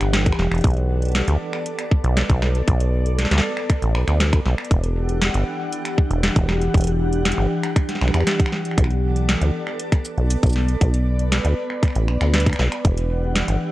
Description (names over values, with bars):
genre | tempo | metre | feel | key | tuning
IDM | 118 BPM | 4/4 | straight | B minor | A4 = 445 Hz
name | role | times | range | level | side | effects
glassy FM pad | sustained chords | 0.0-13.7 s | E3 to F#5 | -26 LUFS | equal | ensemble chorus, built-in reverb, sidechain pumping
deep acid bass | bass | 0.0-13.6 s | E1 to E2 | -19 LUFS | equal | tube saturation
booming analog drum machine | drums | 0.0-13.6 s | cabasa, finger snaps, hi-hat, snare drum | -24 LUFS | equal | overdrive
electronic kick drum | drums | 0.3-12.9 s | none | -17 LUFS | equal | none
room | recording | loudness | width
light reverb, digital ambience | worn, warbling old tape, cassette tape, warbly pitch drift | -18 LUFS | side -16 dB against mid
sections
0.0-13.7 A section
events
none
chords
0.0 Em9; 0.6 Bm7; 4.7 Em9; 8.8 Bm7; 12.8 Em9